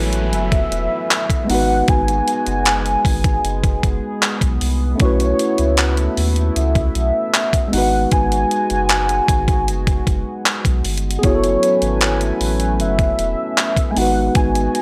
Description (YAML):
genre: contemporary R&B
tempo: 77 BPM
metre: 4/4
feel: straight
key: unclear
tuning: A4 = 440 Hz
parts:
  - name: tine electric piano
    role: accompaniment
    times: 0.0-14.8 s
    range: G#3 to B4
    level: -25 LUFS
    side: equal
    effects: none
  - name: chorused pulse-width pad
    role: sustained chords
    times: 0.0-14.8 s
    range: F#3 to G#5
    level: -29 LUFS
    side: equal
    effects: sidechain pumping
  - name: saturated sub bass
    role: bass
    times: 0.0-14.7 s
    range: E1 to D#2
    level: -23 LUFS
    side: equal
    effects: none
  - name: downlifter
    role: sound effects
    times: 0.0-5.0 s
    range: none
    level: -38 LUFS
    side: equal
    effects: none
  - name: detuned 8-bit digital drum machine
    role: drums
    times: 0.1-14.8 s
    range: handclaps, hi-hat, kick drum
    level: -21 LUFS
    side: equal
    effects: none
  - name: warm velvety synth lead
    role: melody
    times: 0.3-14.8 s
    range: C#5 to G#5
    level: -23 LUFS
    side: equal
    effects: chorus, tape echo
room: digital ambience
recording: dry, gritty hardware recording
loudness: -17 LUFS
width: mono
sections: 0.0-14.8 A section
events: none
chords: 0.0 F#m11; 1.5 G#m7; 5.0 B9sus4; 7.7 G#m7; 11.2 F#m11; 14.0 G#m7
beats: 0.33 1.10 | 1.88 2.66 3.44 4.22 | 5.00 5.78 6.56 7.34 | 8.12 8.90 9.68 10.46 | 11.23 12.01 12.79 13.57 | 14.35